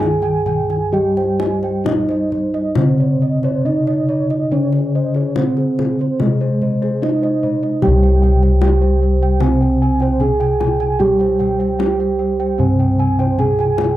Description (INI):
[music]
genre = Javanese gamelan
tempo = 64-76 BPM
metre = 4/4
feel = straight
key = C pelog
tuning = A4 = 440 Hz
[part]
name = gamelan-type bronze metallophone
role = melody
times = 0.0-14.0 s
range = Ab3 to Ab4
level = -19 LUFS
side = right 3 dB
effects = none
[part]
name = gamelan-type bronze metallophone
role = accompaniment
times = 0.0-14.0 s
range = C3 to Ab3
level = -21 LUFS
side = left 1 dB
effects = none
[part]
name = gamelan-type bossed gongs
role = arpeggios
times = 0.0-14.0 s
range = Ab4 to Ab5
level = -27 LUFS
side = left 5 dB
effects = none
[part]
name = gamelan-type bronze metallophone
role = arpeggios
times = 0.0-14.0 s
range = Ab4 to Ab5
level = -26 LUFS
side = right 6 dB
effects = none
[part]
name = gamelan-type bossed gongs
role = bass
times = 0.0-14.0 s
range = C2 to G4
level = -18 LUFS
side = left 1 dB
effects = none
[part]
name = kendang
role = percussion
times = 0.0-14.0 s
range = none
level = -25 LUFS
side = left 6 dB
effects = none
[sound]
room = little or no reverb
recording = dry, close 1970s-style studio recording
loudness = -14 LUFS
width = side -14 dB against mid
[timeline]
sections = 0.0-7.8 A section; 7.8-14.0 B section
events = none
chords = none